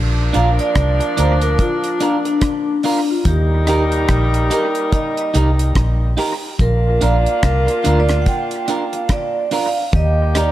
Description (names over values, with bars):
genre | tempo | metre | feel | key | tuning
roots reggae | 72 BPM | 4/4 | swing 60% on 16ths | Bb major | A4 = 441 Hz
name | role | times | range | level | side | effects
mellow horn section | second line | 0.0-10.5 s | F3 to G4 | -23 LUFS | left 1 dB | dub echo
vintage muted fingered electric bass | bass | 0.0-10.5 s | Bb1 to Eb2 | -16 LUFS | equal | none
electric guitar at the edge of break-up | accompaniment | 0.3-10.5 s | D4 to Bb4 | -23 LUFS | right 3 dB | spring reverb, dub echo
deep reggae drum kit | drums | 0.3-10.5 s | hi-hat, kick drum, rim click | -21 LUFS | equal | none
vibraphone with medium mallets | melody | 0.4-10.5 s | D4 to G5 | -20 LUFS | right 1 dB | dub echo
room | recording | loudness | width
small room reverb | none | -14 LUFS | side -14 dB against mid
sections
0.0-10.5 A section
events
vibraphone solo 0.0-10.5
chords
0.0 Bb; 3.3 Eb; 6.6 Bb; 9.9 Eb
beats
0.76 1.59 2.42 | 3.26 4.09 4.93 5.76 | 6.59 7.43 8.26 9.10 | 9.93